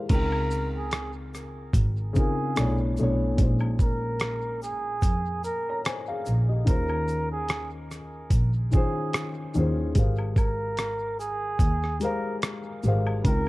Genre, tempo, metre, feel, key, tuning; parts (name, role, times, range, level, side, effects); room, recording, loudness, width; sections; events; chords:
lo-fi hip hop; 73 BPM; 4/4; swing 55% on 16ths; Bb dorian; A4 = 440 Hz
felt-muted upright piano; accompaniment; 0.0-13.5 s; Bb2 to Bb5; -30 LUFS; left 2 dB; low-pass filter
trumpet with bucket mute; melody; 0.1-13.5 s; Ab4 to Bb4; -32 LUFS; right 2 dB; low-pass filter, tape echo
dark double bass; bass; 0.1-13.5 s; Ab1 to F2; -27 LUFS; equal
dusty soul sampler-style drum kit; drums; 0.1-13.5 s; crash cymbal, hi-hat, kick drum, rim click, shaker; -24 LUFS; equal
tube shaker and woodblock; percussion; 0.1-13.5 s; -44 LUFS; left 2 dB
studio ambience; echo-heavy mix, cassette tape; -23 LUFS; side -20 dB against mid
0.1-13.5 A section
0.1 Dbmaj9#11; 2.6 Bm11; 3.4 Bbm11; 10.0 Abmaj13